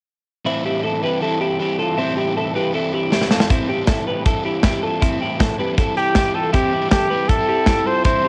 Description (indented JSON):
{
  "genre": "jangly indie pop",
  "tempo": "158 BPM",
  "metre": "4/4",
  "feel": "straight",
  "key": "A minor",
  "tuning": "A4 = 440 Hz",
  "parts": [
    { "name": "crunchy overdriven guitar", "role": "accompaniment", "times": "0.4-8.3 s", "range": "A2 to E4", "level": "-27 LUFS", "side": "equal", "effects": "cassette tape" },
    { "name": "twelve-string electric guitar", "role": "arpeggios", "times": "0.5-8.3 s", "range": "C4 to B4", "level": "-24 LUFS", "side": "equal", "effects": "cassette tape" },
    { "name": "modern studio drum kit", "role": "drums", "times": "3.1-8.1 s", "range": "hi-hat, kick drum, snare drum", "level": "-21 LUFS", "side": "equal", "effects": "vintage 12-bit sampler grit, cassette tape" },
    { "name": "clear trumpet", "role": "melody", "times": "6.0-8.3 s", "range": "G4 to C5", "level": "-21 LUFS", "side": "equal", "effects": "cassette tape" }
  ],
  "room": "moderate spring reverb, RT60 2.1 s",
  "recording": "home recording on cassette",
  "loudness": "-19 LUFS",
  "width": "mono",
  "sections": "0.5-6.5 A section; 6.5-8.3 B section",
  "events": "drum fill 3.1-3.5",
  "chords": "0.5 Am7"
}